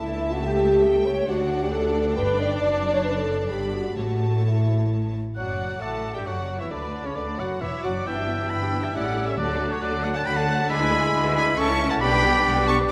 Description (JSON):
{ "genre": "quick classical-period movement for symphony orchestra", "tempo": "136 BPM", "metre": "3/4", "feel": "rubato", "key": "D major", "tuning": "A4 = 442 Hz", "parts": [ { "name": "clear chamber violin section", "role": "melody", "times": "0.0-12.9 s", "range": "C#5 to C#6", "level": "-39 LUFS", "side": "equal", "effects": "none" }, { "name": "rich chamber violin section", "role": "second line", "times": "0.0-12.7 s", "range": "A4 to A5", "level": "-35 LUFS", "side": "equal", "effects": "none" }, { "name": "rich chamber viola section", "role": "accompaniment", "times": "0.0-12.9 s", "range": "A3 to C#5", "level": "-34 LUFS", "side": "equal", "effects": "none" }, { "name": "mellow French horn section", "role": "sustained chords", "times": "0.0-12.9 s", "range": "C#3 to D5", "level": "-29 LUFS", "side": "equal", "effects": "none" }, { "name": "rich chamber double bass section", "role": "bass", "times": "0.0-12.8 s", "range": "E1 to D2", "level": "-32 LUFS", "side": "equal", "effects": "none" }, { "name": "rich symphonic cello section", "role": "bass", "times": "0.0-12.9 s", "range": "C#2 to D3", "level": "-33 LUFS", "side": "equal", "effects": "none" }, { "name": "timpani", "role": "percussion", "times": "4.0-4.6, 9.4-10.0 s", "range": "A2 to D3", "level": "-37 LUFS", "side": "equal", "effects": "none" }, { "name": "clear clarinet", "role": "second line", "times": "5.4-12.9 s", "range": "C#4 to A4", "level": "-37 LUFS", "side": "equal", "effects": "none" }, { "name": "clear oboe", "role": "second line", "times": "5.4-12.8 s", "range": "C#5 to C#6", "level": "-30 LUFS", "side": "equal", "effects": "none" }, { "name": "mellow hollow silver concert flute", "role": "second line", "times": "5.4-12.9 s", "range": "B5 to F#6", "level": "-33 LUFS", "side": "equal", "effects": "none" }, { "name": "mellow bassoon", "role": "accompaniment", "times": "5.4-12.9 s", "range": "C#3 to A3", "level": "-34 LUFS", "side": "equal", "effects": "none" } ], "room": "wet scoring stage reverb, RT60 1.7 s", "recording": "none", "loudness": "-23 LUFS", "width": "mono", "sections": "0.0-5.4 A section; 5.4-12.9 B section", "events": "none", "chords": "0.0 A/C#; 0.9 A7/C#; 1.3 D; 2.2 G; 2.6 D/F#; 3.5 G; 4.0 A; 5.4 D/F#; 6.3 Dmaj9/F#; 6.7 Bm; 8.1 Em7/G; 8.9 A7; 9.4 D; 10.7 E7/D; 11.6 A/C#; 12.0 G/B" }